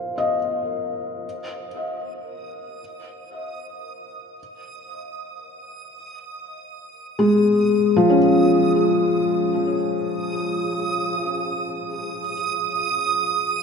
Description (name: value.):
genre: ambient.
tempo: free time.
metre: none.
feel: none.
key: Db major.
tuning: A4 = 440 Hz.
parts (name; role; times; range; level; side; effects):
felt-muted upright piano; arpeggios; 0.0-13.6 s; F3 to F5; -20 LUFS; left 1 dB; diffuse ambient delay.
backwards swelling texture; texture; 2.1-13.6 s; Eb6; -28 LUFS; right 6 dB; built-in reverb.
room: wet cathedral reverb, RT60 5.3 s.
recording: nothing above 10.8 kHz.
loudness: -19 LUFS.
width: side -6 dB against mid.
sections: 0.0-1.2 A section; 1.2-13.6 A section.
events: fade-in on synth texture 1.2-13.6.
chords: 0.0 Db6 (rootless); 1.2 Db6.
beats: free time.